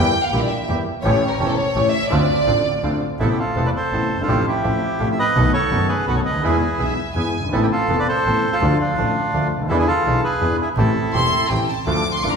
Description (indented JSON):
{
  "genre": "tango",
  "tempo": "166 BPM",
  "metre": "3/4",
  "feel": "rubato",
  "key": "D minor, A minor from 3.2 s",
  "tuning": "A4 = 441 Hz",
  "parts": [
    { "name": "warm studio violin section", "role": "second line", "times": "0.0-3.0, 6.8-7.4, 11.1-12.4 s", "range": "A4 to D6", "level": "-21 LUFS", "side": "left 1 dB", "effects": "none" },
    { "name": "warm grand piano", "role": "accompaniment", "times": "0.0-12.4 s", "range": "E1 to A4", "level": "-22 LUFS", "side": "left 2 dB", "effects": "none" },
    { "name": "bandoneon", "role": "stabs", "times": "0.0-12.4 s", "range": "G#3 to A4", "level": "-28 LUFS", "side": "right 4 dB", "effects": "none" },
    { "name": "clear double bass", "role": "bass", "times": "0.0-12.4 s", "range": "E1 to E2", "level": "-24 LUFS", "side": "right 1 dB", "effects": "none" },
    { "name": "bandoneon", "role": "melody", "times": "3.2-11.5 s", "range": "D4 to E5", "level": "-21 LUFS", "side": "right 1 dB", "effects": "none" }
  ],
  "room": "wet recital hall reverb, RT60 1.7 s",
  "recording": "recorded in a church or concert hall",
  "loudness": "-17 LUFS",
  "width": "side -6 dB against mid",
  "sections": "0.0-3.2 A section; 3.2-11.9 B section",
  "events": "violin section solo 0.0-3.2",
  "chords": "0.0 Edim; 1.0 A7; 2.1 Dm7; 3.2 Amadd9; 4.3 Fadd9/A; 5.4 B7; 6.4 E; 7.5 Amadd9; 8.6 Dm; 9.7 E7; 10.8 Am7"
}